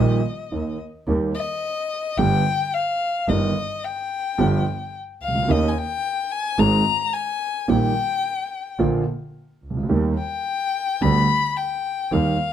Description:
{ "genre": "tango", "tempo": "109 BPM", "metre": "4/4", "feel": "rubato", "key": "Eb major", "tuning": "A4 = 441 Hz", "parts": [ { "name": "warm violin", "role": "second line", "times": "0.0-12.5 s", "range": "Eb5 to B5", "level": "-24 LUFS", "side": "left 6 dB", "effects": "none" }, { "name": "warm concert grand piano", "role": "accompaniment", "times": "0.0-12.4 s", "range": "G1 to Ab4", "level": "-21 LUFS", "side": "right 3 dB", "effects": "none" }, { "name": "clear double bass", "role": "bass", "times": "0.0-12.3 s", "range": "G1 to Eb2", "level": "-25 LUFS", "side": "right 1 dB", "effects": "none" } ], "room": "moderate club reverb, RT60 0.9 s", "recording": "none", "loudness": "-20 LUFS", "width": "side -10 dB against mid", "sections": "0.0-1.1 A section; 1.1-12.5 A section", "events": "violin solo 0.0-1.1, 1.1-12.5", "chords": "0.0 Eb; 2.2 G; 3.3 Eb/G; 4.4 G7; 5.5 Eb7; 6.6 Ab; 7.7 Eb/Bb; 8.8 Bb; 9.9 Eb; 11.0 G/D", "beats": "0.51 | 1.06 1.62 2.17 2.73 | 3.28 3.83 4.38 4.93 | 5.48 6.03 6.58 7.13 | 7.68 8.23 8.79 9.34 | 9.90 10.45 11.01 11.56 | 12.11" }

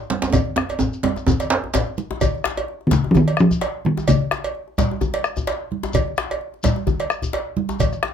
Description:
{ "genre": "west african traditional, West African drum ensemble", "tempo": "129 BPM", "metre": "4/4", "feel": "swing 54% on 16ths", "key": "Db major pentatonic", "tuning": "A4 = 438 Hz", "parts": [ { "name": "bombo", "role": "percussion", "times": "0.1-8.1 s", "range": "none", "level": "-24 LUFS", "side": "left 3 dB", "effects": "none" }, { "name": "congas", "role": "percussion", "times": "0.1-8.1 s", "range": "none", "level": "-26 LUFS", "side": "right 6 dB", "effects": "none" }, { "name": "djembe", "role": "percussion", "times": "0.1-1.9 s", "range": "none", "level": "-22 LUFS", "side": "right 4 dB", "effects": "none" }, { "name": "djembe", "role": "percussion", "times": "0.2-8.1 s", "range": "none", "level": "-27 LUFS", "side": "left 5 dB", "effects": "none" }, { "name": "shekere", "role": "percussion", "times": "0.2-8.0 s", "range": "none", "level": "-30 LUFS", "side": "left 5 dB", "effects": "none" }, { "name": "cowbell", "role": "percussion", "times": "0.3-7.9 s", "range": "none", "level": "-26 LUFS", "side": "right 5 dB", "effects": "none" }, { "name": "talking drum", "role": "melody", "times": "2.9-5.0 s", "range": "Db3 to F3", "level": "-16 LUFS", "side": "left 1 dB", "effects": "none" } ], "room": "moderate small room reverb, RT60 0.6 s", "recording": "none", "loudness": "-18 LUFS", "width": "side -8 dB against mid", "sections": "0.0-2.2 A section; 2.2-8.1 B section", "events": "drum fill 0.3-2.2", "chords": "none", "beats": "| 0.34 0.81 1.28 1.75 | 2.22 2.69 3.15 3.62 | 4.09 4.55 5.02 5.48 | 5.95 6.41 6.87 7.34 | 7.80" }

